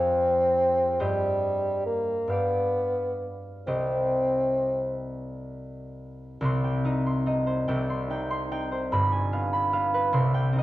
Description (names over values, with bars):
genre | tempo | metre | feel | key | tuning
classical, romantic duo for bassoon and harp | 42-50 BPM (dotted quarters) | 6/8 | rubato | C minor | A4 = 440 Hz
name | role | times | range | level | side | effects
dark bassoon | melody | 0.0-5.0 s | G3 to C4 | -24 LUFS | equal | none
concert harp | accompaniment | 0.0-10.6 s | G1 to C6 | -26 LUFS | equal | none
room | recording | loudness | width
wet recital hall reverb, RT60 1.6 s | worn, warbling old tape, cassette tape, warbly pitch drift | -23 LUFS | side -16 dB against mid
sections
0.0-6.4 A section; 6.4-10.6 B section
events
none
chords
0.0 Fm; 1.0 Cm/G; 2.3 G7; 3.7 Cm; 8.9 G7b9